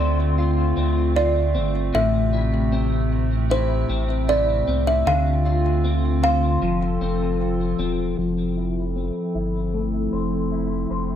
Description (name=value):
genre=dream pop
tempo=77 BPM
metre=4/4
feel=straight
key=F major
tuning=A4 = 439 Hz
part: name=kalimba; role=melody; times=0.0-7.8 s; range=C5 to F5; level=-24 LUFS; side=right 1 dB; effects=ping-pong delay
part: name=warbly tape-like pad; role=sustained chords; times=0.0-11.2 s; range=C3 to A4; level=-26 LUFS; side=right 2 dB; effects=chorus, built-in reverb, low-pass filter
part: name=electric guitar at the edge of break-up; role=arpeggios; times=0.0-11.2 s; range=A2 to C5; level=-25 LUFS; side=left 4 dB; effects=ensemble chorus, low-pass filter, ping-pong delay
part: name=warm sub bass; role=bass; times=0.0-11.2 s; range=E1 to D2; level=-23 LUFS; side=equal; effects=none
room=moderate studio reverb, RT60 0.9 s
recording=dark, warm production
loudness=-19 LUFS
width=side -10 dB against mid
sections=0.0-8.2 A section; 8.2-11.2 B section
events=filter sweep 8.2-11.2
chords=0.0 Dm7; 1.9 Am; 5.1 Dm7; 6.6 Fmaj7